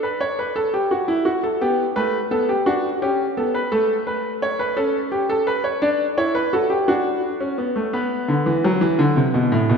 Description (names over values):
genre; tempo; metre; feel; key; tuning
classical, baroque-style 3-part fugue for grand piano; 57 BPM (dotted quarters); 12/8; straight; unclear; A4 = 440 Hz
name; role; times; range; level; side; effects
clear grand piano; solo; 0.0-9.8 s; A2 to D5; -18 LUFS; equal; none
room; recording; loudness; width
wet church reverb, RT60 2.6 s; recorded in a church or concert hall; -18 LUFS; side -6 dB against mid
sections
0.0-9.8 A section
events
none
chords
0.0 D; 1.6 G; 3.7 A; 5.8 D; 7.9 Asus2 (rootless)